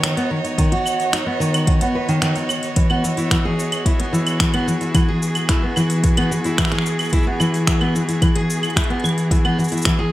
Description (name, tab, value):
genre	folktronica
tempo	110 BPM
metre	4/4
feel	straight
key	E major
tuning	A4 = 440 Hz
part	rich string quartet	sustained chords	0.0-10.1 s	E3 to D#5	-26 LUFS	equal	vintage 12-bit sampler grit
part	picked steel-string acoustic guitar	arpeggios	0.0-10.1 s	D#3 to B4	-19 LUFS	equal	vintage 12-bit sampler grit, tape echo
part	organic electronic drum kit	drums	0.0-10.0 s	claves, finger snaps, hi-hat, shaker	-24 LUFS	equal	none
part	electronic kick drum	drums	0.6-10.0 s	none	-19 LUFS	equal	none
room	light reverb, digital ambience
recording	none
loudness	-16 LUFS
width	side -15 dB against mid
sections	0.0-2.8 A section; 2.8-10.1 A section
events	band accent 2.2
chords	0.0 B; 2.8 E